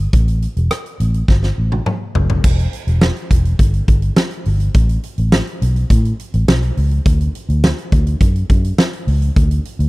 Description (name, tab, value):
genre	1980s-style pop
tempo	104 BPM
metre	4/4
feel	straight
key	unclear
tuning	A4 = 445 Hz
part	vintage muted fingered electric bass	bass	0.0-9.9 s	E1 to A2	-15 LUFS	equal	none
part	huge arena drum kit	drums	0.1-9.9 s	crash cymbal, hi-hat, kick drum, rim click, snare drum, toms	-15 LUFS	equal	none
room	little or no reverb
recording	dry, close 1970s-style studio recording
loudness	-13 LUFS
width	side -21 dB against mid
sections	0.0-2.4 A section; 2.4-9.9 B section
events	drum fill 1.3-2.4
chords	none